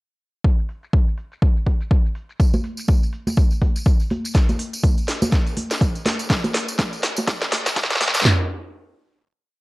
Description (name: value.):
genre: house.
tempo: 123 BPM.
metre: 4/4.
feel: swing 58% on 16ths.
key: none.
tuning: none.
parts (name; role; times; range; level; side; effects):
garage drum kit; drums; 0.4-8.3 s; hi-hat, shaker, snare drum; -23 LUFS; equal; high-pass filter on hats, low-pass filter on hats, high-pass filter on perc, low-pass filter on perc, high-pass filter on snare, low-pass filter on snare, high-pass filter on room, low-pass filter on room.
punchy analog drum machine; drums; 0.4-8.4 s; handclaps, kick drum, snare drum, toms; -17 LUFS; equal; overdrive.
tambourine and congas; percussion; 2.4-8.2 s; none; -27 LUFS; right 1 dB; none.
room: light reverb.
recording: dry, gritty hardware recording, high-pass filter.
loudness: -18 LUFS.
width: side -21 dB against mid.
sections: 0.4-4.3 intro; 4.3-8.3 build; 8.3-9.6 final hit.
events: build-up 4.3-8.3; drum fill 4.3-8.3; filter sweep 4.3-8.3.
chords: none.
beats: | 0.45 0.93 1.42 1.91 | 2.40 2.88 3.37 3.86 | 4.35 4.84 5.32 5.81 | 6.30 6.79 7.28 7.76 | 8.25.